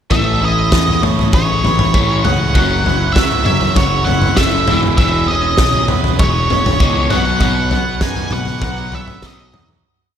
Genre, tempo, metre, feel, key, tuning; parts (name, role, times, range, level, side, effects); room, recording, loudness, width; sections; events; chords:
indie rock; 99 BPM; 4/4; straight; A4 = 441 Hz
octave-fuzz lead guitar; melody; 0.1-9.7 s; C#5 to G#5; -18 LUFS; right 1 dB; distortion, slapback echo, tape echo
crunchy overdriven guitar; riff; 0.1-9.8 s; E2 to B3; -20 LUFS; left 5 dB; slapback echo
raw garage guitar; riff; 0.1-9.8 s; B2 to C#5; -22 LUFS; right 7 dB; overdrive, lush chorus, slapback echo, tape echo
growling picked electric bass; bass; 0.1-9.8 s; E1 to B2; -21 LUFS; equal; overdrive
loose indie drum kit; drums; 0.1-9.8 s; kick drum, snare drum, toms; -16 LUFS; equal
moderate lush hall reverb, RT60 2.8 s; big arena sound; -12 LUFS; side -9 dB against mid
0.1-9.8 verse
fade-out 7.4-9.8
0.1 Amaj7; 2.6 F#m7; 4.7 E6; 7.1 B